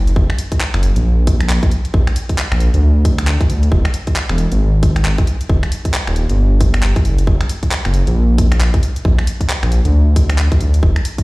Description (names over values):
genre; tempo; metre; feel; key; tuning
UK garage, two-step garage; 135 BPM; 4/4; swing 60% on 16ths; unclear; A4 = 440 Hz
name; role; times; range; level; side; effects
dark detuned saw bass; bass; 0.0-10.9 s; Eb1 to D2; -13 LUFS; equal; sidechain pumping
garage drum kit; drums; 0.1-11.2 s; finger snaps, handclaps, hi-hat; -23 LUFS; equal; none
electronic kick drum; drums; 0.2-11.2 s; none; -15 LUFS; equal; none
room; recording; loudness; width
digital ambience; played on a big sound system in a bare room, large studio reverb; -12 LUFS; side -23 dB against mid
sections
0.0-11.2 A section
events
none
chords
none